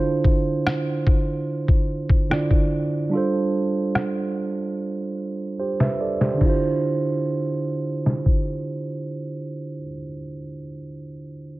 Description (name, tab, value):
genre	contemporary R&B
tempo	73 BPM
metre	4/4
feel	straight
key	D minor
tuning	A4 = 440 Hz
part	mellow tine electric piano	accompaniment	0.0-11.6 s	D3 to E5	-24 LUFS	right 2 dB	none
part	detuned 8-bit digital drum machine	drums	0.2-8.5 s	crash cymbal, kick drum, rim click, snare drum	-20 LUFS	left 1 dB	none
room	light reverb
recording	low-pass filter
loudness	-20 LUFS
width	side -18 dB against mid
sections	0.0-6.4 A section; 6.4-9.7 B section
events	filter sweep 0.0-6.4; drum fill 4.8-6.4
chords	0.0 Dm7; 3.1 G9sus4; 6.4 Dm7